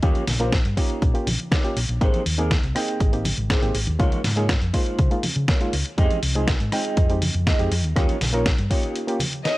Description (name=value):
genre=nu-disco, nu disco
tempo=121 BPM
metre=4/4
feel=straight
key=unclear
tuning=A4 = 443 Hz
part: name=barky reed electric piano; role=accompaniment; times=0.0-9.2 s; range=Ab3 to G5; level=-28 LUFS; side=equal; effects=overdrive, fast tremolo, sidechain pumping, low-pass filter, tape echo
part: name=mellow electric guitar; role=riff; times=0.0-9.6 s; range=Eb4 to Eb5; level=-30 LUFS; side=right 2 dB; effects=lush chorus, tape echo
part: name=hollow-body short-scale fingered electric bass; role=bass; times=0.0-8.7 s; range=Ab1 to Db3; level=-24 LUFS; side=equal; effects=none
part: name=dusty soul sampler-style drum kit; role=drums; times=0.0-9.6 s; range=hi-hat, rim click, snare drum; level=-27 LUFS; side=equal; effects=none
part: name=electronic kick drum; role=drums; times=0.0-8.8 s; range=none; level=-21 LUFS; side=equal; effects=overdrive
part: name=congas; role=percussion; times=0.2-9.3 s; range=none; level=-31 LUFS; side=right 1 dB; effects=none
part: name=dark studio violin section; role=melody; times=9.5-9.6 s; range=Eb5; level=-21 LUFS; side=left 2 dB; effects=none
room=little or no reverb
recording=dry, gritty hardware recording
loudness=-19 LUFS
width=side -18 dB against mid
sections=0.0-9.6 A section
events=break 9.0-9.6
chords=0.0 Eb7; 2.0 Abmaj7; 4.0 Db6; 6.0 Fm7; 8.0 Eb7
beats=| 0.03 0.53 1.02 1.52 | 2.01 2.51 3.00 3.50 | 4.00 4.49 4.99 5.48 | 5.98 6.48 6.97 7.47 | 7.96 8.46 8.96 9.45